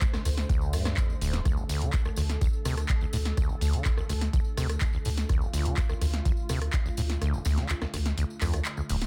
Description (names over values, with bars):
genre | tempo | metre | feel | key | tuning
acid house | 125 BPM | 4/4 | straight | D minor | A4 = 435 Hz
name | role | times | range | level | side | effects
warm analog pad | sustained chords | 0.0-9.1 s | D3 to C5 | -42 LUFS | equal | chorus, sidechain pumping
acid bass, saw | riff | 0.0-9.0 s | D1 to D3 | -33 LUFS | equal | tube saturation, cassette tape
electronic kick drum | drums | 0.0-6.8 s | none | -30 LUFS | equal | none
punchy analog drum machine | drums | 0.0-9.1 s | handclaps, hi-hat, rim click, snare drum | -37 LUFS | equal | none
tambourine | percussion | 0.0-9.1 s | none | -47 LUFS | equal | none
saturated sub bass | bass | 0.3-9.1 s | D1 to D2 | -32 LUFS | equal | sidechain pumping
room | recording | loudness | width
digital ambience | dense, heavily limited modern master | -28 LUFS | mono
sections
0.0-9.1 A section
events
kick drops out 7.2-9.1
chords
0.0 D5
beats
0.01 0.49 0.97 | 1.45 1.93 2.41 2.89 | 3.37 3.85 4.33 4.81 | 5.29 5.77 6.25 6.73 | 7.21 7.69 8.17 8.65